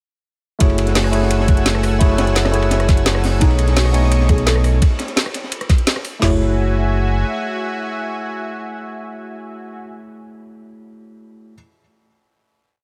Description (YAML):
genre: liquid drum and bass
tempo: 171 BPM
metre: 4/4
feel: straight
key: F# dorian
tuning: A4 = 440 Hz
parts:
  - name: tine electric piano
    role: accompaniment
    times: 0.6-11.6 s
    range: A3 to G#5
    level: -25 LUFS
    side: equal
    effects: delay
  - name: lush unison pad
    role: sustained chords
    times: 0.6-9.8 s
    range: A3 to E6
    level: -29 LUFS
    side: equal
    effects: chorus, sidechain pumping
  - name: sub bass with octave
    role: bass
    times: 0.6-7.2 s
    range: F#1 to B1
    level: -19 LUFS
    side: equal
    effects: none
  - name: crunchy breakbeat drum kit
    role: drums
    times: 0.6-6.1 s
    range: hi-hat, ride cymbal, snare drum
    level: -29 LUFS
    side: equal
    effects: high-pass filter on cymbals, high-pass filter on hats, high-pass filter on snare, high-pass filter on room
  - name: garage drum kit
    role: drums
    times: 0.6-6.3 s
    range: crash cymbal, kick drum, snare drum, toms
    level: -17 LUFS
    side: equal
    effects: overdrive
  - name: garage drum kit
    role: drums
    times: 0.6-6.1 s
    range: hi-hat, rim click, snare drum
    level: -24 LUFS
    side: equal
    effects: none
  - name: felt-muted upright piano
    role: arpeggios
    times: 3.4-11.5 s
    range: D#4 to A4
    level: -29 LUFS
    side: equal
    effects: tape echo
room: light reverb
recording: none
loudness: -17 LUFS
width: mono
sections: 0.6-6.2 drop; 6.2-9.0 final chord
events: drop 0.6-6.2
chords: 0.6 F#m9; 3.4 B13; 6.2 F#m9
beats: | 0.61 0.96 1.31 1.66 | 2.01 2.36 2.71 3.06 | 3.41 3.76 4.12 4.47 | 4.82 5.17 5.52 5.87 | 6.22 6.57 6.92 7.27 | 7.62 7.97 8.33 8.68